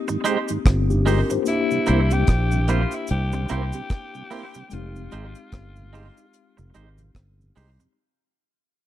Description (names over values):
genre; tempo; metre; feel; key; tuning
lovers rock reggae; 74 BPM; 4/4; swing 59% on 16ths; unclear; A4 = 440 Hz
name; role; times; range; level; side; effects
mellow tine electric piano; accompaniment; 0.0-8.0 s; Ab3 to C5; -27 LUFS; left 5 dB; medium stereo tremolo, slapback echo
mellow tonewheel organ; accompaniment; 0.1-7.9 s; F2 to G4; -29 LUFS; right 5 dB; chorus vibrato, slow rotary speaker
twangy electric guitar; stabs; 0.1-7.8 s; Ab3 to C5; -28 LUFS; right 6 dB; slapback echo
cabasa; percussion; 0.1-8.0 s; none; -42 LUFS; right 6 dB; none
deep reggae drum kit; drums; 0.3-8.0 s; hi-hat, kick drum, rim click; -19 LUFS; equal; none
fingered electric bass; bass; 0.7-7.8 s; F1 to C2; -22 LUFS; equal; none
growling tenor saxophone; melody; 1.5-7.2 s; E4 to G4; -31 LUFS; left 3 dB; tape echo
room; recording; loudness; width
small room ambience; dry, close 1970s-style studio recording; -19 LUFS; side -12 dB against mid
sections
0.0-8.0 A section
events
fade-out 0.0-8.0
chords
0.0 Abmaj7; 1.5 C7; 4.7 Fm9